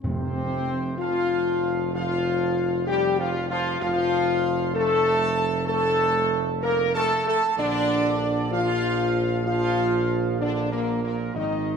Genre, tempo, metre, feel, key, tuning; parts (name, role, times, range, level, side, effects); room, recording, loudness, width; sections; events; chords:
classical; 64 BPM; 4/4; straight; F major; A4 = 442 Hz
clear trumpet section; melody; 0.0-11.8 s; Bb4 to Bb5; -30 LUFS; right 2 dB
warm French horn section; sustained chords; 0.0-11.8 s; Bb3 to Bb4; -24 LUFS; left 3 dB
warm trombone section; sustained chords; 0.0-11.8 s; Bb2 to Bb3; -30 LUFS; right 5 dB
mellow tuba; bass; 0.0-11.8 s; F1 to Bb1; -29 LUFS; right 5 dB
timpani; percussion; 0.0-1.4 s; F2; -31 LUFS; equal
wet scoring stage reverb, RT60 1.6 s; -21 LUFS; side -6 dB against mid
0.0-11.8 A section
0.0 F; 7.6 Bb